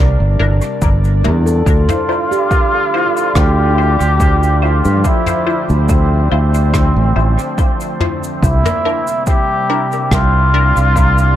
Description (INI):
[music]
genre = ambient dub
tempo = 71 BPM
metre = 4/4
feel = swing 53% on 16ths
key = D minor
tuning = A4 = 440 Hz
[part]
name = warbly tape-like pad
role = sustained chords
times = 0.0-11.4 s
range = C3 to D5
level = -23 LUFS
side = equal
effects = chorus, built-in reverb, phaser
[part]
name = handpan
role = arpeggios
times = 0.0-11.4 s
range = F3 to A4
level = -24 LUFS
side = right 2 dB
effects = dub echo
[part]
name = fingered electric bass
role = bass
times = 0.0-11.4 s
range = G1 to G2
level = -12 LUFS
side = equal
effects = none
[part]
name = filtered dub chord stab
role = stabs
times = 0.4-10.7 s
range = D4 to C5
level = -23 LUFS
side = left 3 dB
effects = phaser, analog chorus, dub echo
[part]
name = soft brush drum kit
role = drums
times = 0.6-11.3 s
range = cabasa, rim click, toms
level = -24 LUFS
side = left 1 dB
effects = dub echo
[part]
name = electronic kick drum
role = drums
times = 0.8-11.1 s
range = none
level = -15 LUFS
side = equal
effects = none
[part]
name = trombone with straight mute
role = melody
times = 1.7-11.4 s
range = C4 to G4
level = -17 LUFS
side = equal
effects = dub echo
[sound]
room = light reverb, small room ambience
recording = echo-heavy mix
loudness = -11 LUFS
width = side -12 dB against mid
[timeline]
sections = 0.0-11.4 A section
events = none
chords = 0.0 C9; 1.7 Dm9; 8.4 C9